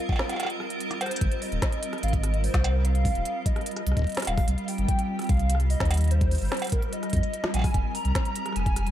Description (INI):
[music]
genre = IDM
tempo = 147 BPM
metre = 4/4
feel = straight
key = Ab major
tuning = A4 = 439 Hz
[part]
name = warbly nostalgic lead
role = melody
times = 0.0-8.9 s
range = Bb4 to Bb5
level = -33 LUFS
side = equal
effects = ensemble chorus, tape echo
[part]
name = granular cloud pad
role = sustained chords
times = 0.0-8.9 s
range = G3 to Eb5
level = -33 LUFS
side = equal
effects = built-in reverb
[part]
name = electronic kick drum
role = drums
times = 0.1-8.7 s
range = none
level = -26 LUFS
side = equal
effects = none
[part]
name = organic electronic drum kit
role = drums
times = 0.1-8.9 s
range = cowbell, hi-hat, rim click, snare drum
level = -32 LUFS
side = right 1 dB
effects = dub echo
[part]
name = warm sub bass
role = bass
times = 1.2-8.9 s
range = Eb1 to F2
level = -24 LUFS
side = equal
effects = none
[sound]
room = little or no reverb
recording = echo-heavy mix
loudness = -23 LUFS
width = side -12 dB against mid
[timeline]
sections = 0.0-1.2 A section; 1.2-8.9 A section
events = break 0.4-1.2; drum fill 1.0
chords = 0.0 F9sus4; 1.2 Abmaj7; 4.5 Cm7; 7.7 Fm9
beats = 0.40 0.81 | 1.21 1.62 2.03 2.44 | 2.85 3.25 3.66 4.07 | 4.48 4.89 5.29 5.70 | 6.11 6.52 6.93 7.34 | 7.74 8.15 8.56